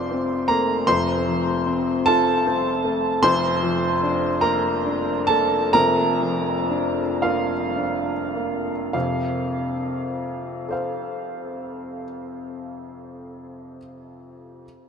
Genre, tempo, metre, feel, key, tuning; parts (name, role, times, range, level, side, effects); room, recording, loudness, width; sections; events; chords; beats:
neoclassical minimalist piano; 33-51 BPM (dotted quarters); 6/8; rubato; F major; A4 = 437 Hz
warm upright piano; solo; 0.0-14.7 s; F1 to D6; -20 LUFS; equal
wet huge ambient reverb, RT60 7.8 s; in a vast, echoing space; -20 LUFS; side -6 dB against mid
0.0-8.9 A section; 8.9-12.4 B section
slowing down 2.0-8.9
0.0 F
| 0.87 2.04 | 3.22 4.43 | 5.75 7.22 | 8.93 10.67